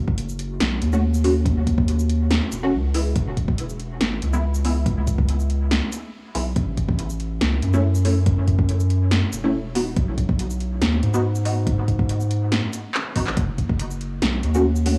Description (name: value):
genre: deep dubstep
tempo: 141 BPM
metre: 4/4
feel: half-time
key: F# dorian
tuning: A4 = 440 Hz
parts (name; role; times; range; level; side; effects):
- saturated sub bass; bass; 0.0-15.0 s; E1 to G#2; -24 LUFS; equal; transformer saturation
- electronic kick drum; drums; 0.1-13.8 s; none; -25 LUFS; equal; overdrive
- deep house drum kit; drums; 0.2-14.9 s; handclaps, hi-hat, shaker, snare drum; -28 LUFS; equal; overdrive
- filtered dub chord stab; stabs; 0.9-15.0 s; G#3 to F#4; -29 LUFS; equal; phaser, ensemble chorus, dub echo
room: digital ambience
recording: dry, gritty hardware recording, small room reverb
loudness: -22 LUFS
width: mono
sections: 0.0-15.0 A section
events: drum fill 12.9-13.4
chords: 0.0 F#m; 3.2 E; 6.6 A; 10.0 B; 13.4 F#m